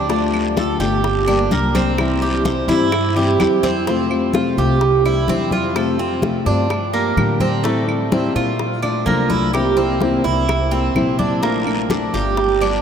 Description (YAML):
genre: latin, Cuban son and guajira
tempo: 127 BPM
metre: 4/4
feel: straight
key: unclear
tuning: A4 = 440 Hz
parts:
  - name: fingerpicked plugged-in steel-string acoustic guitar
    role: accompaniment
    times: 0.0-12.8 s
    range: C3 to G4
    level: -20 LUFS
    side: left 3 dB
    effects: none
  - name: Cuban tres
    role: arpeggios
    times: 0.0-12.8 s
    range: A3 to C5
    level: -19 LUFS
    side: right 4 dB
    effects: none
  - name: upright bass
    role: bass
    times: 0.0-12.8 s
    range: G1 to Bb2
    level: -23 LUFS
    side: equal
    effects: none
  - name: bongos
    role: percussion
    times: 0.1-12.8 s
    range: none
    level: -30 LUFS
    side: left 5 dB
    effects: none
  - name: congas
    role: percussion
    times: 0.1-12.8 s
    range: none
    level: -27 LUFS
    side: left 2 dB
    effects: none
  - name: guiro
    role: percussion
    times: 0.1-3.9, 11.4-12.8 s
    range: none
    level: -34 LUFS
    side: left 4 dB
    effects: none
  - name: claves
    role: percussion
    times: 0.3-12.8 s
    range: none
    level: -34 LUFS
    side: right 4 dB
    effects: none
room: wet cathedral reverb, RT60 6.4 s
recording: in a vast, echoing space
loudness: -15 LUFS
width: side -8 dB against mid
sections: 0.0-3.9 A section; 3.9-12.8 B section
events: drum fill 3.4-3.9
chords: 0.1 Dm; 1.0 Gm; 2.0 C; 3.9 F; 4.8 Cadd9; 5.8 F; 6.7 Gm7; 7.6 Am7; 8.6 Bbmaj7; 9.5 C7; 11.4 Bbmaj7